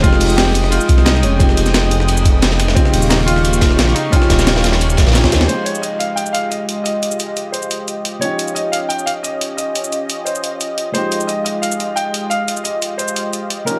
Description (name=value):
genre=liquid drum and bass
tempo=176 BPM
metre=4/4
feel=straight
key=F minor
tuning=A4 = 440 Hz
part: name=warm grand piano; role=melody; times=0.0-13.8 s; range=C4 to G5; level=-24 LUFS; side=equal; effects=delay
part: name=dark baby grand piano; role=accompaniment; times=0.0-13.8 s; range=Db3 to C5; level=-25 LUFS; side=equal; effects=delay
part: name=lush unison pad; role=sustained chords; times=0.0-13.8 s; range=Ab3 to Eb6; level=-27 LUFS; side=equal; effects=chorus, sidechain pumping
part: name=swelling detuned saw bass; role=bass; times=0.0-5.5 s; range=Eb1 to Eb2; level=-18 LUFS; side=equal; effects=none
part: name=breakbeat sampler-style drum kit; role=drums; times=0.0-13.7 s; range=hi-hat, shaker, snare drum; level=-23 LUFS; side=equal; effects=none
part: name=crunchy breakbeat drum kit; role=drums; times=0.0-5.5 s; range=hi-hat, ride cymbal, snare drum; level=-25 LUFS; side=equal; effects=high-pass filter on cymbals, high-pass filter on hats, high-pass filter on snare, high-pass filter on room
part: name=electronic kick drum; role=drums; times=0.0-5.3 s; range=none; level=-16 LUFS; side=equal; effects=none
room=light reverb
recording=none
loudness=-16 LUFS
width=mono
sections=0.0-5.5 A section; 5.5-13.8 B section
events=drop 0.0-5.5; drum fill 5.2-5.5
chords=0.0 Fm9; 2.8 Eb9; 5.5 Fm9; 8.2 Eb9; 10.9 Fm9